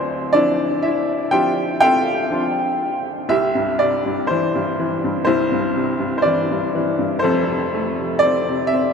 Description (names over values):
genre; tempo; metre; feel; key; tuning
acoustic folk-pop ballad; 61 BPM; 4/4; straight; C major; A4 = 440 Hz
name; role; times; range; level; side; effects
clear upright piano; solo; 0.0-8.9 s; D1 to G5; -17 LUFS; equal; none
room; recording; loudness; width
wet cathedral reverb, RT60 6.3 s; recorded in a church or concert hall; -17 LUFS; side -6 dB against mid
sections
0.0-3.3 A section; 3.3-8.9 A section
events
none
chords
0.0 Dmadd9; 3.3 C; 7.2 F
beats
0.33 1.31 2.30 | 3.29 4.27 5.26 6.24 | 7.23 8.21